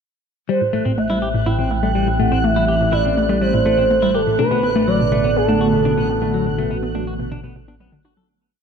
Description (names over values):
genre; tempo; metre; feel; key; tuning
ambient, sequencer-driven space music; 123 BPM; 4/4; straight; A dorian; A4 = 440 Hz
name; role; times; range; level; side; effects
expressive portamento lead; melody; 0.5-7.8 s; A4 to G5; -20 LUFS; right 2 dB; chorus, analog delay
phased analog pad; sustained chords; 0.5-8.3 s; D3 to A4; -24 LUFS; equal; phaser, chorus
clean electric guitar; arpeggios; 0.5-8.3 s; F#3 to A4; -24 LUFS; moving between left 9 dB and equal; auto-pan, analog delay
analog drone; bass; 1.0-8.3 s; A1; -24 LUFS; equal; chorus, phaser
bubbling stepped-filter texture; texture; 0.5-8.3 s; F#6; -30 LUFS; right 2 dB; chorus, built-in reverb
hollow square pluck; riff; 0.6-8.2 s; A2 to D4; -22 LUFS; equal; chorus, cassette tape, analog delay
room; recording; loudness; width
wet plate reverb, RT60 3.1 s; dark, warm production; -15 LUFS; side -6 dB against mid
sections
0.5-8.3 A section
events
fade-in on analog synth pad 0.5-8.3; fade-out 5.7-8.3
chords
0.5 Am7; 4.4 Bm7/A